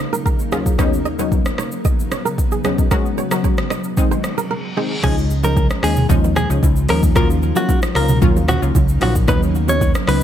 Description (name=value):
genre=afrobeats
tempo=113 BPM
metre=4/4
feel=straight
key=Db major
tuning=A4 = 439 Hz
part: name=granular cloud pad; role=sustained chords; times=0.0-10.2 s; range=Eb2 to Cb5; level=-26 LUFS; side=equal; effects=built-in reverb
part: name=kora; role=riff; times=0.1-4.9 s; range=Ab4 to Eb5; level=-25 LUFS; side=right 6 dB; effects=digital delay
part: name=afro-pop drum kit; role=drums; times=0.1-10.2 s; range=crash cymbal, hi-hat, kick drum, rim click, shaker, toms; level=-18 LUFS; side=equal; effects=overdrive
part: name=analog pluck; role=accompaniment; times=0.5-10.2 s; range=Eb2 to Gb4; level=-22 LUFS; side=left 2 dB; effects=chorus
part: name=reverse cymbal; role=sound effects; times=4.3-5.0 s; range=none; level=-30 LUFS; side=left 1 dB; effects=none
part: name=direct-recorded clean electric guitar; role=melody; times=5.0-10.2 s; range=Gb4 to Db5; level=-22 LUFS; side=equal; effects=digital delay
part: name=fingered electric bass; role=bass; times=5.0-10.2 s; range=Bb1 to Eb2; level=-18 LUFS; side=equal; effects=none
part: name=congas and bongos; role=percussion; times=5.0-9.9 s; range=none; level=-25 LUFS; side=right 9 dB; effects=none
room=little or no reverb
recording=none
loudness=-15 LUFS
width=side -10 dB against mid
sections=0.0-5.0 A section; 5.0-10.2 B section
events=reverse cymbal 4.3-5.0; break 4.5-5.0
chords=0.0 Ebm7; 0.8 Cbadd9/Eb; 2.9 Gbsus2; 4.0 Ab; 5.0 Dbadd9; 7.2 Ebm7; 9.3 Cbadd9